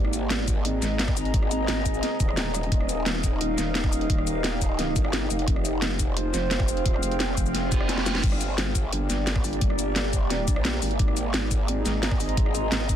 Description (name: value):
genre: dark technical drum and bass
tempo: 174 BPM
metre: 4/4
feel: straight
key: unclear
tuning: A4 = 440 Hz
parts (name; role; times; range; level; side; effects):
- deep dark ambient pad; sustained chords; 0.0-13.0 s; Bb3 to F5; -32 LUFS; right 1 dB; chorus, built-in reverb, vintage 12-bit sampler grit, sidechain pumping
- growl bass; bass; 0.0-13.0 s; Eb1 to Bb1; -28 LUFS; equal; chorus, overdrive
- drum and bass drum kit; drums; 0.0-13.0 s; cabasa, crash cymbal, hi-hat, rim click, snare drum; -29 LUFS; equal; none
- warbly tape-like pad; texture; 0.0-13.0 s; Eb4 to Bb5; -32 LUFS; right 1 dB; chorus, built-in reverb, sidechain pumping
- electronic kick drum; drums; 0.5-13.0 s; none; -25 LUFS; equal; none
- reverse cymbal; sound effects; 7.7-8.2 s; none; -35 LUFS; right 5 dB; none
room: light reverb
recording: dense, heavily limited modern master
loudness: -22 LUFS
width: side -10 dB against mid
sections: 0.0-13.0 A section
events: reverse cymbal 7.7-8.2; drum fill 7.9-8.2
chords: 0.0 Ab; 2.7 Eb; 5.5 Fm; 8.2 Gm; 11.0 Ab